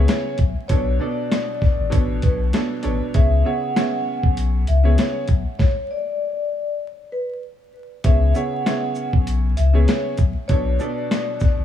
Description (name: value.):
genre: hip hop, boom-bap hip-hop.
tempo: 98 BPM.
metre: 4/4.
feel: swing 55% on 16ths.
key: C# phrygian.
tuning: A4 = 439 Hz.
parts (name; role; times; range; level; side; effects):
warm upright piano; accompaniment; 0.0-11.6 s; B2 to D5; -26 LUFS; right 4 dB; high-pass filter, low-pass filter.
sub bass with octave; bass; 0.0-11.6 s; A1 to C#2; -18 LUFS; left 2 dB; none.
vibraphone with soft mallets; melody; 0.1-11.6 s; B4 to F#5; -26 LUFS; left 1 dB; high-pass filter, low-pass filter, analog delay.
boom bap sampler-style drum kit; drums; 0.1-11.6 s; hi-hat, kick drum, rim click, shaker, snare drum; -20 LUFS; left 1 dB; none.
room: little or no reverb.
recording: vinyl crackle.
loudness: -18 LUFS.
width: side -10 dB against mid.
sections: 0.0-8.0 A section; 8.0-11.6 B section.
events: stop 5.6-8.0.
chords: 0.0 C#m7; 0.7 Bm7; 3.1 C#m7; 5.6 N.C.; 8.0 C#m7; 10.5 Bm7.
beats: 0.09 | 0.70 1.31 1.92 2.53 | 3.15 3.76 4.37 4.98 | 5.59 6.21 6.82 7.43 | 8.04 8.66 9.27 9.88 | 10.49 11.11.